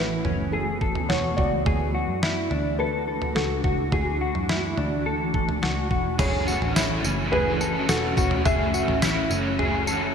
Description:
dream pop; 106 BPM; 4/4; straight; F# minor; A4 = 439 Hz
felt-muted upright piano; melody; 0.0-10.1 s; F#4 to E5; -30 LUFS; right 1 dB; lush chorus, ping-pong delay
granular cloud pad; sustained chords; 0.0-10.1 s; E3 to F#4; -29 LUFS; right 1 dB; built-in reverb
mellow electric guitar; arpeggios; 0.0-10.1 s; C#4 to A4; -28 LUFS; left 3 dB; analog chorus, ping-pong delay
vintage muted picked electric bass; bass; 0.0-10.1 s; E1 to F#2; -30 LUFS; equal
detuned 8-bit digital drum machine; drums; 0.2-10.0 s; crash cymbal, kick drum, snare drum, tambourine, toms; -27 LUFS; right 1 dB; gated reverb
raw garage guitar; accompaniment; 6.2-10.1 s; F#2 to F#4; -29 LUFS; right 2 dB; overdrive, tremolo, ensemble chorus
moderate lush hall reverb, RT60 2.4 s; bright 1980s-style digital production; -21 LUFS; side -7 dB against mid
0.0-6.2 A section; 6.2-10.1 B section
0.0 F#m7; 1.7 Dadd9; 6.2 F#m7

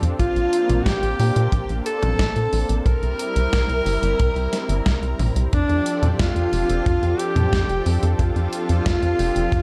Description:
synthwave; 90 BPM; 4/4; straight; A4 = 440 Hz
breathy alto saxophone; melody; 0.0-9.6 s; D4 to Bb4; -26 LUFS; equal; delay
string machine, violins; second line; 0.0-9.6 s; D4 to Bb4; -34 LUFS; equal; ensemble chorus, delay
lush unison pad; sustained chords; 0.0-9.6 s; F3 to A4; -32 LUFS; equal; chorus, sidechain pumping
tight sequencer bass; bass; 0.0-9.6 s; F1 to Bb2; -24 LUFS; equal; sidechain pumping
clean 12-bit digital drum machine; drums; 0.0-9.6 s; hi-hat, snare drum, toms; -30 LUFS; equal; gated reverb
kick drum; drums; 0.2-9.6 s; -26 LUFS; equal
small room ambience; -21 LUFS; mono
0.0-9.6 A section
0.2 Bbadd9; 2.9 C; 5.5 F6

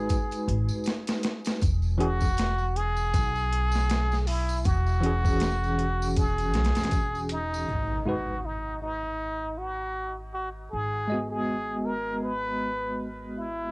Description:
trip hop; 79 BPM; 4/4; swing 57% on 16ths; G# minor; A4 = 445 Hz
trumpet with plunger mute; melody; 0.0-13.7 s; D#4 to B4; -30 LUFS; equal; cassette tape, dub echo
bell-like tine electric piano; accompaniment; 0.0-13.7 s; E3 to D#5; -31 LUFS; equal; tremolo, vintage 12-bit sampler grit, low-pass filter, cassette tape
upright bass; bass; 0.0-13.7 s; E1 to B1; -29 LUFS; equal
dusty soul sampler-style drum kit; drums; 0.1-7.5 s; hi-hat, kick drum, snare drum; -28 LUFS; equal; overdrive, small room reverb, cassette tape
tambourine; percussion; 0.1-7.7 s; -44 LUFS; right 1 dB
impact; sound effects; 7.7-10.7 s; -36 LUFS; equal
little or no reverb; home recording on cassette; -25 LUFS; side -31 dB against mid
0.0-7.7 A section; 7.7-13.7 B section
impact 7.7-10.7; filter sweep on tine electric piano 7.7-13.7
0.0 G#m7; 1.6 E69; 7.7 G#m7

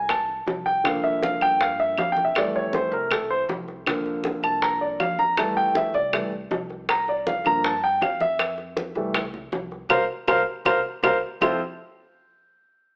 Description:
Afro-Cuban jazz; 159 BPM; 4/4; straight; F major; A4 = 438 Hz
warm grand piano; accompaniment; 0.0-11.6 s; D3 to Bb5; -22 LUFS; equal
upright bass; bass; 0.0-11.6 s; F1 to G2; -41 LUFS; equal
bongos; percussion; 0.1-11.5 s; -28 LUFS; equal
claves; percussion; 0.1-11.5 s; -27 LUFS; equal
congas; percussion; 0.1-11.5 s; -37 LUFS; equal
moderate large studio reverb, RT60 1.2 s; AM radio sound; -21 LUFS; side -35 dB against mid
0.0-11.4 A section; 11.4-12.9 B section
grand piano solo 0.0-11.4; drum fill 9.9-11.4; band accent 9.9-11.4
0.0 C5; 0.9 C7sus4; 2.4 Fmaj7; 3.9 C7sus4; 5.4 Fmaj7; 6.9 C7sus4; 8.4 Fmaj7; 9.9 C7sus4; 11.4 Fmaj7

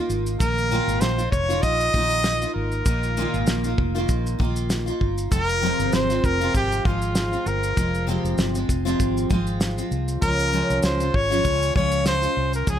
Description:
acoustic pop; 98 BPM; 4/4; swing 55% on 16ths; A4 = 440 Hz
picked steel-string acoustic guitar; accompaniment; 0.0-12.8 s; F2 to F4; -25 LUFS; equal; double-tracked left and right
vintage muted fingered electric bass; bass; 0.1-12.8 s; F1 to Db2; -26 LUFS; equal
cloth-damped thuddy drum kit; drums; 0.1-12.8 s; kick drum, shaker, snare drum; -25 LUFS; equal
clear trumpet; melody; 0.4-12.8 s; F4 to Eb5; -24 LUFS; equal; tape echo
light reverb; -20 LUFS; side -10 dB against mid
0.0-12.8 A section
0.4 Bbsus4; 5.3 Fm; 10.2 Db

